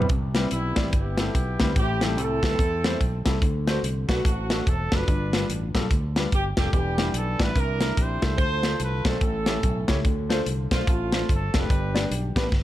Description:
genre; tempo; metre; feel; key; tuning
uptempo gospel; 145 BPM; 4/4; swing 61% on 8ths; C major; A4 = 440 Hz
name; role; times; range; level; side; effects
warm concert grand piano; accompaniment; 0.0-12.5 s; G2 to D5; -30 LUFS; left 3 dB; none
fingered electric bass; bass; 0.0-12.6 s; E1 to E2; -28 LUFS; equal; none
tight funk drum kit; drums; 0.0-12.6 s; hi-hat, kick drum, snare drum, toms; -24 LUFS; equal; none
warm horn section; melody; 0.5-12.3 s; G3 to C5; -29 LUFS; right 1 dB; none
room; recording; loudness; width
light reverb; dark, warm production; -22 LUFS; side -14 dB against mid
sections
0.1-12.6 A section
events
none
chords
0.1 Cmaj7; 1.8 Am7; 3.4 D7; 5.1 G7; 6.7 Em7; 7.6 C13; 8.4 Dm7; 9.2 A7; 10.0 Dm7; 11.7 G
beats
| 0.10 0.52 0.93 1.34 | 1.76 2.17 2.59 3.00 | 3.42 3.83 4.25 4.66 | 5.08 5.49 5.91 6.32 | 6.73 7.15 7.56 7.97 | 8.39 8.80 9.21 9.63 | 10.04 10.45 10.87 11.28 | 11.69 12.11 12.52

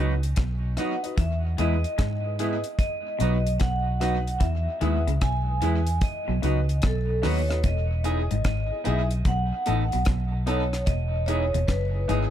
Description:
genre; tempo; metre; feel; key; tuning
roots reggae; 74 BPM; 4/4; swing 65% on 16ths; E major; A4 = 440 Hz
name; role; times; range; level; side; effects
clean electric guitar; accompaniment; 0.0-12.2 s; F#3 to A4; -33 LUFS; right 4 dB; tape echo
semi-hollow electric guitar; riff; 0.0-12.2 s; E2 to G#3; -34 LUFS; left 7 dB; lush chorus
clear upright piano; stabs; 0.0-12.3 s; B3 to B4; -34 LUFS; left 5 dB; none
vintage muted fingered electric bass; bass; 0.0-12.3 s; E1 to G#2; -25 LUFS; equal; none
deep reggae drum kit; drums; 0.2-12.3 s; hi-hat, kick drum, rim click; -27 LUFS; equal; none
vibraphone with medium hard mallets; melody; 0.8-12.3 s; A4 to G#5; -30 LUFS; right 1 dB; tape echo
room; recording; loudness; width
little or no reverb; dark, warm production; -22 LUFS; side -11 dB against mid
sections
0.0-7.6 A section; 7.6-12.3 B section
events
none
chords
0.0 B; 1.2 E; 2.8 B; 4.4 E; 6.0 B; 7.6 Emaj7; 9.3 B7; 10.9 Emaj7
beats
0.37 | 1.18 1.99 2.80 3.60 | 4.41 5.22 6.03 6.83 | 7.64 8.45 9.26 10.06 | 10.87 11.68

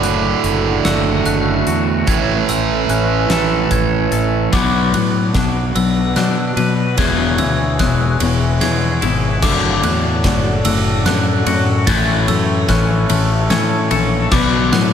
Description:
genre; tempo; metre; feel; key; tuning
post-rock; 49 BPM (dotted quarters); 6/8; straight; D lydian; A4 = 441 Hz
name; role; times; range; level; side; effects
hand-pumped harmonium; sustained chords; 0.0-14.9 s; E3 to A5; -25 LUFS; left 1 dB; none
glockenspiel with hard plastic mallets; arpeggios; 0.0-14.9 s; D6 to A6; -24 LUFS; right 3 dB; ping-pong delay
twangy electric guitar; arpeggios; 0.0-14.9 s; D2 to B4; -23 LUFS; left 2 dB; lush chorus, ping-pong delay
distorted electric guitar; riff; 0.0-4.5 s; D2 to A3; -17 LUFS; right 8 dB; overdrive
fuzz fingered electric bass; bass; 0.0-14.9 s; E1 to B2; -20 LUFS; equal; overdrive
huge arena drum kit; drums; 0.0-14.9 s; crash cymbal, hi-hat, kick drum, ride cymbal, snare drum; -21 LUFS; equal; none
overdriven electric guitar; riff; 4.5-14.9 s; D2 to B3; -18 LUFS; left 6 dB; wide subtle chorus
room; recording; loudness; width
moderate lush hall reverb, RT60 1.9 s, small room ambience; dreamy mix soaked in reverb; -13 LUFS; side -8 dB against mid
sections
0.0-4.5 A section; 4.5-14.9 B section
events
build-up 4.5-14.9; drum fill 4.5-14.9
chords
0.0 D/F#; 2.1 A; 4.5 Bm; 7.0 E6; 9.4 D/F#; 11.9 A; 14.3 Bm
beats
0.85 | 2.08 3.31 | 4.53 5.76 | 6.98 8.21 | 9.43 10.65 | 11.88 13.10 | 14.32

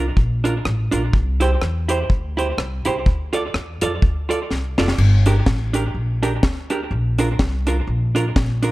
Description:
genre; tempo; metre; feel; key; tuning
ska; 124 BPM; 4/4; swing 58% on 8ths; G dorian; A4 = 440 Hz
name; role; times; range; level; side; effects
vintage hollow-body jazz guitar; accompaniment; 0.0-8.7 s; D4 to D5; -23 LUFS; right 3 dB; slapback echo
upright bass; bass; 0.0-8.7 s; F1 to F2; -20 LUFS; equal; none
deep reggae drum kit; drums; 0.2-8.7 s; crash cymbal, hi-hat, kick drum, rim click, snare drum; -20 LUFS; equal; none
room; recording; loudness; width
small room ambience; dark, warm production; -17 LUFS; side -18 dB against mid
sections
0.0-5.0 A section; 5.0-8.7 B section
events
drum fill 4.5-5.0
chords
0.0 Bb; 1.1 C; 3.1 Dm; 5.0 Gm; 6.9 Bb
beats
0.17 0.65 | 1.13 1.61 2.10 2.58 | 3.06 3.54 4.02 4.50 | 4.99 5.47 5.95 6.43 | 6.91 7.39 7.88 8.36

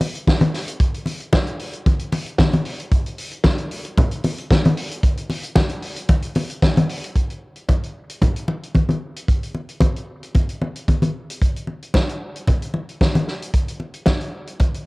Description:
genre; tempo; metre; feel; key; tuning
disco; 113 BPM; 4/4; straight; none; none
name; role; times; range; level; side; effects
vintage drum kit; drums; 0.0-14.9 s; hi-hat, kick drum, snare drum; -20 LUFS; equal; cassette tape
congas; percussion; 0.0-14.7 s; none; -20 LUFS; left 1 dB; none
room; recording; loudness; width
light reverb, small room ambience; home recording on cassette; -18 LUFS; side -23 dB against mid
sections
0.0-7.2 A section; 7.2-14.9 B section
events
none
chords
none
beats
0.28 | 0.81 1.33 1.86 2.39 | 2.92 3.45 3.98 4.51 | 5.04 5.57 6.10 6.63 | 7.16 7.69 8.22 8.75 | 9.28 9.82 10.35 10.88 | 11.41 11.95 12.48 13.01 | 13.54 14.07 14.60

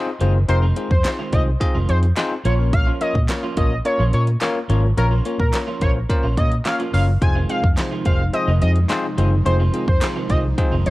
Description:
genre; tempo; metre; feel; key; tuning
dance-pop; 107 BPM; 4/4; straight; Bb minor; A4 = 441 Hz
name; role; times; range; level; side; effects
bell-like tine electric piano; accompaniment; 0.0-10.9 s; Bb3 to Eb5; -25 LUFS; left 3 dB; auto-pan, sidechain pumping
electric guitar at the edge of break-up; riff; 0.1-10.9 s; Eb3 to F4; -30 LUFS; right 5 dB; wide subtle chorus
vintage muted fingered electric bass; bass; 0.2-10.9 s; F1 to Bb2; -18 LUFS; equal; sidechain pumping
pop drum kit; drums; 0.2-10.9 s; handclaps, hi-hat, kick drum, snare drum; -21 LUFS; equal; cassette tape
octave-doubled lead; melody; 0.5-10.9 s; Bb4 to Ab5; -26 LUFS; equal; chorus, cassette tape, tape echo
group handclap; percussion; 1.0-10.2 s; none; -36 LUFS; right 2 dB; none
airy breathy pad; sustained chords; 7.2-10.9 s; C3 to Eb4; -29 LUFS; right 1 dB; chorus, sidechain pumping
room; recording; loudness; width
little or no reverb; home recording on cassette; -16 LUFS; side -18 dB against mid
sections
0.0-10.9 A section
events
none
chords
0.0 Fm7; 2.5 Bbm; 7.2 Fm7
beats
| 0.49 1.05 1.61 2.17 | 2.73 3.29 3.85 4.41 | 4.97 5.54 6.09 6.66 | 7.22 7.78 8.34 8.90 | 9.46 10.02 10.58

